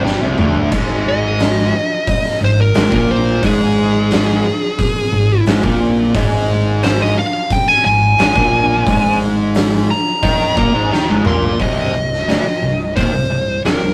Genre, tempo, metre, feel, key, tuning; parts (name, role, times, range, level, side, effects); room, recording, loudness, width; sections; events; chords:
stoner and doom metal; 88 BPM; 4/4; straight; A4 = 440 Hz
fuzz guitar; riff; 0.0-13.9 s; C2 to Eb4; -18 LUFS; equal; distortion
fuzz fingered electric bass; bass; 0.0-13.9 s; C1 to Eb2; -26 LUFS; equal; overdrive
oversized low-tuned drum kit; drums; 0.1-13.8 s; crash cymbal, hi-hat, kick drum, snare drum, toms; -21 LUFS; equal
fuzz lead guitar; melody; 1.1-13.9 s; Ab4 to C6; -20 LUFS; equal; distortion
moderate booth ambience, RT60 0.2 s; rough rehearsal-room recording, tube saturation; -15 LUFS; mono
0.0-11.6 A section; 11.6-13.9 B section
lead electric guitar solo 0.0-11.6; drum fill 0.1-0.7, 10.9-11.6
0.0 C5; 0.7 Ab5; 11.6 Cm